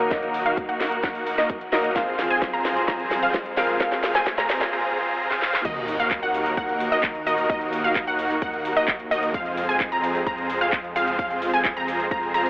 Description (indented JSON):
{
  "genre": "EDM, festival progressive house",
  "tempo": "130 BPM",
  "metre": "4/4",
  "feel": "straight",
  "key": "unclear",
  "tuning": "A4 = 440 Hz",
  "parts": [
    { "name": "bright grand piano", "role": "accompaniment", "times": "0.0-5.7 s", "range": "F3 to Bb4", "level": "-30 LUFS", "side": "left 1 dB", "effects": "none" },
    { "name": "rich studio string section", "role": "sustained chords", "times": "0.0-12.5 s", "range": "Eb2 to C5", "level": "-31 LUFS", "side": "equal", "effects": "sidechain pumping" },
    { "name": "wide unison pluck", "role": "arpeggios", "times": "0.0-12.5 s", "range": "Eb5 to Bb5", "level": "-26 LUFS", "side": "equal", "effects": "sidechain pumping, dub echo" },
    { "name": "dense compressed supersaw", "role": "riff", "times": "0.0-12.5 s", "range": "Bb3 to Bb5", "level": "-25 LUFS", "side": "equal", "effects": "sidechain pumping, low-pass filter, dub echo" },
    { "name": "house drum kit", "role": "drums", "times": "0.0-12.5 s", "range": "crash cymbal, handclaps, hi-hat, shaker, snare drum", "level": "-28 LUFS", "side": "equal", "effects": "none" },
    { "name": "riser and sub drop", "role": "sound effects", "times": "0.8-7.5 s", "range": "none", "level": "-41 LUFS", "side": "equal", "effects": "none" },
    { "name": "electronic kick drum", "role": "drums", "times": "0.1-12.2 s", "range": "none", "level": "-31 LUFS", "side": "equal", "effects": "none" },
    { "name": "wide detuned saw bass", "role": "bass", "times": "5.7-12.5 s", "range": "Eb2 to F2", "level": "-33 LUFS", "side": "equal", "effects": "chorus, sidechain pumping" }
  ],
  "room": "moderate huge ambient reverb, RT60 7.6 s",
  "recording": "high-pass filter, telephone sound",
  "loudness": "-21 LUFS",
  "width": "side -22 dB against mid",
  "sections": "0.0-5.7 A section; 5.7-12.5 B section",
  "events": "build-up 0.0-5.7; drum fill 0.0-4.7, 5.3-5.7; filter sweep 0.0-5.7; drop 5.7-12.5; impact 5.7-7.5",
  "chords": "0.0 Ebm; 2.0 Fm; 5.7 Ebm; 9.3 Fm",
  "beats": "| 0.11 0.57 1.03 1.50 | 1.96 2.42 2.88 3.34 | 3.80 4.27 4.73 5.19 | 5.65 6.11 6.57 7.04 | 7.50 7.96 8.42 8.88 | 9.34 9.80 10.27 10.73 | 11.19 11.65 12.11"
}